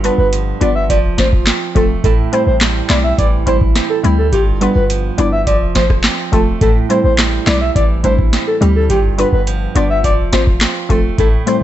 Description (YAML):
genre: dancehall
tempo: 105 BPM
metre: 4/4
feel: straight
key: A minor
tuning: A4 = 442 Hz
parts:
  - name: breathy flute-like synth lead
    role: melody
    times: 0.0-11.6 s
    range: G4 to E5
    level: -18 LUFS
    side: equal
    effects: chorus, ping-pong delay
  - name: hollow square pluck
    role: accompaniment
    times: 0.0-11.6 s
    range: F3 to G4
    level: -20 LUFS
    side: left 3 dB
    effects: chorus
  - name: flamenco guitar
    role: arpeggios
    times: 0.0-11.6 s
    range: G2 to F4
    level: -21 LUFS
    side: right 9 dB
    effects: none
  - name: clean 808-style bass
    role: bass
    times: 0.0-11.4 s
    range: E1 to D2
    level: -17 LUFS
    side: equal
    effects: none
  - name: booming analog drum machine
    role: drums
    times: 0.0-11.6 s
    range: handclaps, hi-hat, kick drum, rim click, snare drum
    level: -15 LUFS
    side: equal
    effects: overdrive
room: digital ambience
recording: nothing above 8.0 kHz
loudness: -11 LUFS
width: side -12 dB against mid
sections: 0.0-11.6 A section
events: none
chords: 0.0 G7; 0.9 F; 2.0 Am7; 4.3 G7; 5.5 F; 6.6 Am7; 8.9 G7; 10.0 F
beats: 0.33 0.90 1.47 | 2.04 2.61 3.19 3.76 | 4.33 4.90 5.47 6.04 | 6.61 7.18 7.76 8.33 | 8.90 9.47 10.04 10.61 | 11.19